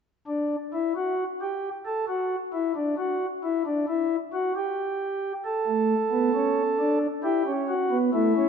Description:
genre	classical, baroque-style 4-part fugue for pipe organ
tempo	67 BPM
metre	3/4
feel	straight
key	unclear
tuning	A4 = 441 Hz
part	pipe organ, flutes	solo	0.3-8.5 s	A3 to A4	-24 LUFS	equal	none
room	wet concert hall reverb, RT60 1.7 s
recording	nothing above 7.9 kHz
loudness	-24 LUFS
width	side -7 dB against mid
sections	0.0-8.5 A section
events	none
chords	0.0 N.C.; 5.4 D5/A; 7.2 Em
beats	| 0.05 0.96 1.86 | 2.76 3.66 4.55 | 5.45 6.34 7.24 | 8.14

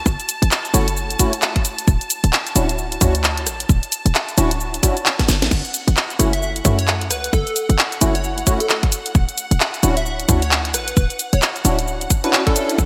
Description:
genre	UK garage, two-step garage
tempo	132 BPM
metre	4/4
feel	swing 60% on 16ths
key	unclear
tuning	A4 = 440 Hz
part	rich chamber violin section	sustained chords	0.0-12.9 s	F#5 to A5	-33 LUFS	equal	sidechain pumping
part	short 808-style bass	bass	0.1-12.9 s	D1 to F#2	-22 LUFS	equal	none
part	electronic kick drum	drums	0.1-12.9 s	none	-20 LUFS	equal	none
part	garage drum kit	drums	0.1-12.9 s	cabasa, crash cymbal, handclaps, hi-hat, rim click, snare drum	-22 LUFS	equal	gated reverb
part	percussive organ stab	stabs	0.7-12.8 s	A3 to A4	-26 LUFS	equal	ensemble chorus, digital delay
part	plucky unison lead	melody	6.3-12.8 s	A4 to E5	-29 LUFS	equal	subtle chorus, digital delay
room	moderate lush hall reverb, RT60 2.2 s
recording	bright 1980s-style digital production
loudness	-18 LUFS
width	mono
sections	0.0-12.9 A section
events	drum fill 5.2-5.5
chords	0.0 F#m7; 1.6 Dmaj9; 5.5 F#m7; 8.9 Dmaj9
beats	| 0.06 0.51 0.97 1.42 | 1.88 2.33 2.79 3.24 | 3.69 4.15 4.60 5.06 | 5.51 5.97 6.42 6.88 | 7.33 7.79 8.24 8.69 | 9.15 9.60 10.06 10.51 | 10.97 11.42 11.88 12.33 | 12.79

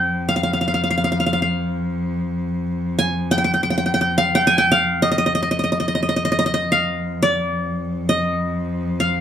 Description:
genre	Turkish makam ensemble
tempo	free time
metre	none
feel	none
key	F makam huseyni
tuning	A4 = 440 Hz
part	qanun	melody	0.0-9.2 s	D5-30c to Ab5	-18 LUFS	equal	none
part	rich cello	drone	0.0-9.2 s	F2	-24 LUFS	equal	none
room	wet small room reverb, RT60 0.6 s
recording	band playing live in one room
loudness	-17 LUFS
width	side -9 dB against mid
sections	0.0-9.2 A section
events	none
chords	none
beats	free time

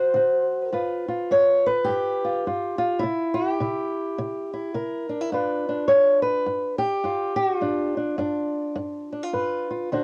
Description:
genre	acoustic country blues, solo or duo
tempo	105 BPM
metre	4/4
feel	swing 62% on 8ths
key	G mixolydian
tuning	A4 = 441 Hz
part	fingerpicked old ladder-braced acoustic guitar	solo	0.0-10.0 s	G2 to C#5	-24 LUFS	equal	cassette tape
room	light reverb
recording	home recording on cassette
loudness	-24 LUFS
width	mono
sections	0.7-10.0 A section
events	none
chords	0.0 D7; 0.7 G7; 3.0 C7; 5.3 G7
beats	0.16 | 0.73 1.30 1.88 2.45 | 3.03 3.60 4.17 4.75 | 5.32 5.90 6.47 7.04 | 7.62 8.19 8.76 9.34 | 9.91

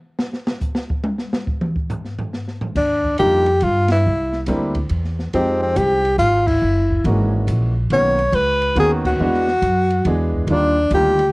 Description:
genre	jazz, small-group swing and bop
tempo	140 BPM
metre	3/4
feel	swing 66% on 8ths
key	unclear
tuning	A4 = 440 Hz
part	open jazz drum kit	drums	0.2-11.3 s	crash cymbal, hi-hat, kick drum, ride cymbal, snare drum, toms	-25 LUFS	equal	cassette tape
part	breathy tenor saxophone	melody	2.8-11.3 s	C4 to Db5	-17 LUFS	equal	cassette tape
part	upright bass	bass	2.8-11.3 s	Gb1 to G2	-20 LUFS	equal	none
part	warm baby grand piano	accompaniment	3.2-11.2 s	D#3 to G#4	-21 LUFS	right 1 dB	cassette tape
room	light reverb, small room ambience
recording	home recording on cassette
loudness	-16 LUFS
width	side -25 dB against mid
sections	0.0-2.8 A section; 2.8-11.3 B section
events	drum solo 0.0-2.8; band accent 3.8, 6.4, 9.0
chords	0.0 N.C.; 2.8 Ebmaj7; 4.1 C7; 5.3 Fm7; 6.6 Gb7; 7.9 Bmaj7; 9.2 E9; 10.5 Ebmaj9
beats	| 0.20 0.62 1.05 | 1.48 1.91 2.34 | 2.77 3.19 3.62 | 4.05 4.48 4.91 | 5.34 5.77 6.20 | 6.63 7.06 7.49 | 7.92 8.35 8.77 | 9.20 9.63 10.06 | 10.49 10.92

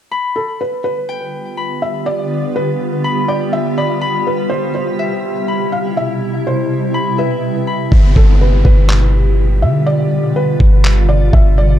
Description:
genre	hip hop, atmospheric cloud-rap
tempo	123 BPM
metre	4/4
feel	half-time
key	unclear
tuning	A4 = 441 Hz
part	granular cloud pad	sustained chords	1.1-11.8 s	B2 to A4	-19 LUFS	equal	built-in reverb, sidechain pumping
part	Celtic harp	arpeggios	0.1-9.0 s	E5 to B5	-22 LUFS	left 6 dB	digital delay
part	felt-muted upright piano	melody	0.4-11.8 s	A4 to F5	-21 LUFS	right 1 dB	digital delay
part	warm 808-style bass	bass	7.9-11.8 s	G1 to D3	-12 LUFS	equal	none
part	lo-fi sampler-style drum kit	drums	7.9-11.4 s	handclaps, kick drum	-12 LUFS	equal	none
part	downlifter	sound effects	7.9-11.8 s	none	-28 LUFS	left 1 dB	none
room	digital ambience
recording	dark, warm production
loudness	-12 LUFS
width	side -11 dB against mid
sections	0.1-7.9 A section; 7.9-11.8 B section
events	hi-hats muted 7.9-11.8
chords	0.1 G7; 4.0 Cmaj7; 7.9 G7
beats	| 0.11 0.60 1.09 1.58 | 2.06 2.55 3.04 3.53 | 4.02 4.50 4.99 5.48 | 5.97 6.46 6.94 7.43 | 7.92 8.41 8.89 9.38 | 9.87 10.36 10.85 11.33

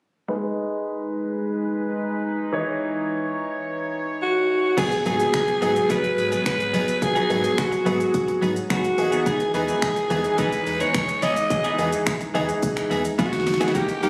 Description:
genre	dance-pop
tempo	107 BPM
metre	4/4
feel	straight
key	G# minor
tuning	A4 = 440 Hz
part	clear concert grand piano	accompaniment	0.3-14.1 s	D#3 to C#5	-29 LUFS	equal	sidechain pumping, low-pass filter
part	sweeping resonant pad	sustained chords	0.3-14.1 s	E3 to C#5	-32 LUFS	equal	chorus, sidechain pumping, low-pass filter
part	raspy alto saxophone	melody	4.2-14.1 s	F#4 to D#5	-25 LUFS	equal	digital delay
part	twelve-string electric guitar	riff	4.8-14.1 s	E3 to G#4	-30 LUFS	equal	subtle chorus
part	sub bass with octave	bass	4.8-14.1 s	D1 to G#2	-37 LUFS	equal	sidechain pumping
part	pop drum kit	drums	4.8-14.1 s	crash cymbal, finger snaps, hi-hat, kick drum, shaker, snare drum	-30 LUFS	equal	none
part	impact	sound effects	4.8-7.0 s	none	-41 LUFS	equal	none
room	light reverb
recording	recorded on a phone in the room, studio reverb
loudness	-23 LUFS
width	mono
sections	0.3-4.8 A section; 4.8-14.1 B section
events	filter sweep 0.3-4.8; impact 4.8-7.0; drum fill 13.2-13.7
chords	0.3 G#m; 2.5 C#madd9; 4.8 G#m7; 9.0 Emaj7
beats	| 0.29 0.85 1.41 1.97 | 2.53 3.09 3.65 4.21 | 4.78 5.34 5.90 6.46 | 7.02 7.58 8.14 8.70 | 9.26 9.82 10.38 10.94 | 11.51 12.07 12.63 13.19 | 13.75

